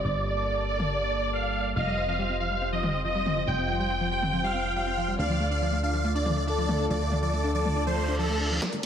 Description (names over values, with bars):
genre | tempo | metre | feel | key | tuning
uplifting trance | 140 BPM | 4/4 | straight | unclear | A4 = 439 Hz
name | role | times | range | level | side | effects
dense compressed supersaw | melody | 0.0-8.9 s | A4 to G5 | -30 LUFS | right 1 dB | sidechain pumping, low-pass filter, ping-pong delay
dark studio violin section | second line | 0.0-8.5 s | A4 to G5 | -32 LUFS | equal | ping-pong delay
lush unison pad | sustained chords | 0.0-8.9 s | D3 to D5 | -35 LUFS | equal | chorus, sidechain pumping
solid FM bass | bass | 0.0-8.9 s | F1 to D2 | -30 LUFS | equal | sidechain pumping, high-pass filter
punchy analog drum machine | drums | 0.8-8.9 s | hi-hat, snare drum, toms | -33 LUFS | left 2 dB | none
wide unison pluck | arpeggios | 1.8-8.9 s | F3 to D4 | -32 LUFS | left 2 dB | sidechain pumping, ping-pong delay
reverse cymbal | sound effects | 8.0-8.6 s | none | -33 LUFS | equal | none
electronic kick drum | drums | 8.6-8.7 s | none | -37 LUFS | equal | high-pass filter on kick, high-pass filter on room
room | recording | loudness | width
light reverb | none | -25 LUFS | side -8 dB against mid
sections
0.0-8.6 A section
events
filter sweep on analog synth pad 0.0-8.6; reverse cymbal 8.0-8.6; drum fill 8.6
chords
0.0 Gmadd9; 1.8 Fsus2; 5.2 Dm